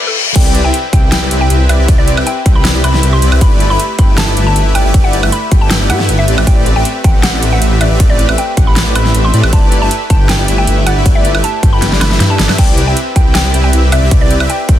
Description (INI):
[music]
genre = future bass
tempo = 157 BPM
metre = 4/4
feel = half-time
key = unclear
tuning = A4 = 440 Hz
[part]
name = mallet-like synth pluck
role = melody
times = 0.1-14.6 s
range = A4 to C6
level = -19 LUFS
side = left 1 dB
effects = chorus, sidechain pumping, ping-pong delay
[part]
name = airy dreamy lead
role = arpeggios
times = 0.4-14.8 s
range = D5 to G5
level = -26 LUFS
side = equal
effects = chorus, sidechain pumping
[part]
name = soft supersaw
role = riff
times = 0.4-14.8 s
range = A3 to G5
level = -17 LUFS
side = equal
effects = sidechain pumping
[part]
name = wide detuned saw bass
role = bass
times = 0.4-14.8 s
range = G1 to A2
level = -13 LUFS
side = equal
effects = chorus, sidechain pumping, high-pass filter
[part]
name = big-room dance drum kit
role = drums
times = 0.4-14.8 s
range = crash cymbal, hi-hat, ride cymbal, snare drum, woodblock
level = -18 LUFS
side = right 1 dB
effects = overdrive, small room ambience
[part]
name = electronic kick drum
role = drums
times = 0.4-14.8 s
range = none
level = -10 LUFS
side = equal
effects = overdrive, small room ambience
[sound]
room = digital ambience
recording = dense, heavily limited modern master, high-pass filter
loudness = -8 LUFS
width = side -12 dB against mid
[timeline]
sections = 0.4-14.8 A section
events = break 0.0-0.4; drop 0.4-14.8; drum fill 11.8-12.6; kick drops out 12.2-12.6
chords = 0.2 N.C.; 0.4 Cmaj9; 3.4 G69; 6.3 Am11; 9.5 G69; 12.6 Cmaj9